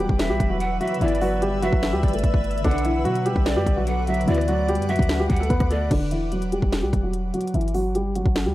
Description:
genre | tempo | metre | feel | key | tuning
hip hop, trap | 147 BPM | 4/4 | half-time | E minor | A4 = 441 Hz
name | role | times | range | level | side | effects
dark concert grand piano | melody | 0.0-8.5 s | D3 to B4 | -24 LUFS | equal | low-pass filter
warbly lo-fi synth keys | accompaniment | 0.0-5.9 s | D3 to B4 | -32 LUFS | left 1 dB | chorus
granular cloud pad | sustained chords | 0.0-5.9 s | B4 to E6 | -34 LUFS | equal | built-in reverb
clean 808-style bass | bass | 0.0-8.5 s | E1 to B2 | -25 LUFS | equal | none
trap drum kit | drums | 0.1-8.5 s | crash cymbal, hi-hat, kick drum, rim click, snare drum | -24 LUFS | equal | none
breathy mellow large pan pipes | second line | 0.2-5.9 s | D5 to F#5 | -29 LUFS | right 1 dB | tape echo
room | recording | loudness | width
little or no reverb | dry, gritty hardware recording | -20 LUFS | side -16 dB against mid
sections
0.0-5.9 A section; 5.9-8.5 B section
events
filter sweep on grand piano 5.9-8.5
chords
0.0 Em; 1.0 G6; 2.6 Bm; 4.3 D6; 5.9 Em; 7.5 G5

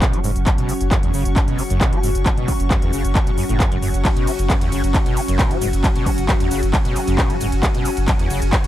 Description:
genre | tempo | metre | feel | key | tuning
driving peak-time techno | 134 BPM | 4/4 | straight | unclear | A4 = 441 Hz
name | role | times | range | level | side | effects
screaming distorted acid line | riff | 0.0-8.7 s | E2 to F#3 | -25 LUFS | equal | distortion, ensemble chorus, sidechain pumping, tape echo
deep dark ambient pad | drone | 0.0-8.7 s | F#3 to F#4 | -28 LUFS | left 4 dB | chorus, built-in reverb, sidechain pumping
electronic kick drum | drums | 0.0-8.6 s | none | -19 LUFS | equal | overdrive
techno drum kit | drums | 0.0-8.7 s | handclaps, hi-hat, ride cymbal, shaker | -24 LUFS | equal | overdrive, sidechain pumping on perc, sidechain pumping on hats, sidechain pumping on cymbals
granular cloud pad | texture | 0.0-8.7 s | C#4 to C#6 | -26 LUFS | equal | built-in reverb, sidechain pumping
saturated sub bass | bass | 0.1-8.7 s | F#1 | -22 LUFS | equal | tube saturation, sidechain pumping, low-pass filter
room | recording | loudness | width
digital ambience | dry, gritty hardware recording | -16 LUFS | side -13 dB against mid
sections
0.0-8.7 A section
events
none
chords
0.0 F#5

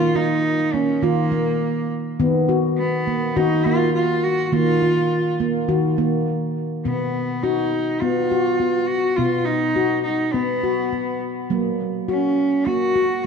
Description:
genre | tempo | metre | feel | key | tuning
world meditative, meditative tuned percussion | 103 BPM | 4/4 | straight | unclear | A4 = 443 Hz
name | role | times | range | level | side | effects
rich cello | melody | 0.0-13.3 s | Bb3 to Gb4 | -22 LUFS | right 1 dB | diffuse ambient delay
handpan | arpeggios | 0.0-13.3 s | B2 to F#4 | -20 LUFS | left 1 dB | diffuse ambient delay
room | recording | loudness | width
wet echo chamber reverb, RT60 1.6 s, small room ambience | dark, warm production | -18 LUFS | side -6 dB against mid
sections
0.0-6.9 A section; 6.9-13.3 B section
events
none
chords
0.0 Bb5/Eb; 2.2 B/D#; 3.4 Ebm; 4.5 Ebsus2; 5.7 Ebm; 6.9 B; 11.5 Gb

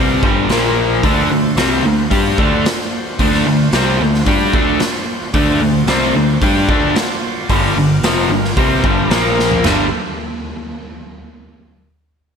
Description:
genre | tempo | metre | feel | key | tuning
blues rock power trio and southern rock | 112 BPM | 4/4 | straight | unclear | A4 = 440 Hz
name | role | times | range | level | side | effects
overdriven tonewheel organ | sustained chords | 0.0-10.0 s | Bb3 to F5 | -26 LUFS | right 3 dB | slow rotary speaker
biting overdriven guitar | riff | 0.0-9.9 s | F2 to G4 | -14 LUFS | left 1 dB | slapback echo
growling picked electric bass | bass | 0.0-9.9 s | F1 to G2 | -21 LUFS | equal | overdrive
raw garage drum kit | drums | 0.2-9.8 s | crash cymbal, hi-hat, kick drum, snare drum, toms | -19 LUFS | equal | none
room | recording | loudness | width
moderate lush hall reverb, RT60 1.9 s, small room ambience | big arena sound | -12 LUFS | side -6 dB against mid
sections
0.0-9.6 A section; 9.6-11.8 B section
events
drum fill 9.4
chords
0.5 Bb5; 1.0 D7#9; 7.5 G7#9; 9.1 Bb5; 9.6 G9

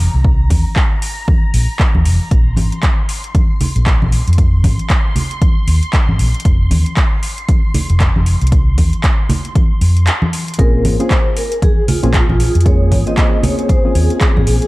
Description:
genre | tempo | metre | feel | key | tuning
deep house | 116 BPM | 4/4 | swing 59% on 16ths | unclear | A4 = 440 Hz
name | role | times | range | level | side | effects
vintage muted fingered electric bass | bass | 0.0-14.6 s | F1 to F2 | -13 LUFS | equal | sidechain pumping
soft string machine | texture | 0.0-14.7 s | Ab4 to C6 | -30 LUFS | right 1 dB | phaser, ensemble chorus
electronic kick drum | drums | 0.2-14.3 s | none | -14 LUFS | equal | overdrive, studio reverb
deep house drum kit | drums | 0.5-14.7 s | handclaps, hi-hat | -22 LUFS | equal | overdrive, studio reverb
congas | percussion | 0.5-14.5 s | none | -20 LUFS | equal | none
vibraphone with medium mallets | melody | 10.6-14.7 s | F4 to Eb5 | -20 LUFS | equal | tape echo
percussive organ stab | stabs | 10.6-14.7 s | Ab3 to C5 | -20 LUFS | left 1 dB | chorus, cassette tape, sidechain pumping, tape echo
room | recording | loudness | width
digital ambience | dark, warm production | -11 LUFS | side -20 dB against mid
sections
0.0-14.7 A section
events
break 10.1-10.6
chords
0.0 N.C.; 2.3 Bbsus2; 6.5 F5; 10.6 Bbm9

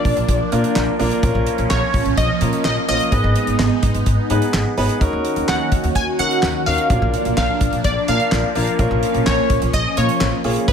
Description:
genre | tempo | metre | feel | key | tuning
synth-pop | 127 BPM | 4/4 | straight | unclear | A4 = 438 Hz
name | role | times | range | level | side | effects
funky polysynth comp | melody | 0.0-10.7 s | Cb5 to Ab5 | -22 LUFS | left 1 dB | chorus, ping-pong delay
warm concert grand piano | accompaniment | 0.0-10.7 s | Bb3 to Db5 | -22 LUFS | equal | none
phased analog pad | sustained chords | 0.0-10.7 s | Eb3 to Gb4 | -23 LUFS | right 1 dB | phaser, chorus
damped 70s drum kit | drums | 0.0-10.7 s | handclaps, hi-hat, kick drum, snare drum | -22 LUFS | equal | none
upright bass | bass | 0.1-10.7 s | Ab1 to Eb3 | -21 LUFS | equal | none
room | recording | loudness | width
moderate plate reverb, RT60 1.5 s | dreamy mix soaked in reverb | -15 LUFS | side -7 dB against mid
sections
0.0-10.7 A section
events
none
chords
0.0 Bb; 1.2 Bbm; 3.1 Abm; 5.0 Ebm7; 6.9 Bb; 8.8 Bbm

